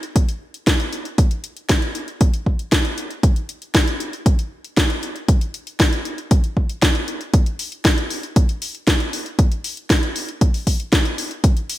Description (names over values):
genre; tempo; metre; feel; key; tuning
italo disco; 117 BPM; 4/4; straight; none; none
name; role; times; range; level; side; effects
house drum kit; drums; 0.0-11.8 s; hi-hat, snare drum; -21 LUFS; equal; overdrive, small room reverb, gated reverb
electronic kick drum; drums; 0.2-11.5 s; none; -16 LUFS; equal; overdrive, small room reverb
room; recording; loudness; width
digital ambience; none; -17 LUFS; side -15 dB against mid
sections
0.0-11.8 A section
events
none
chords
none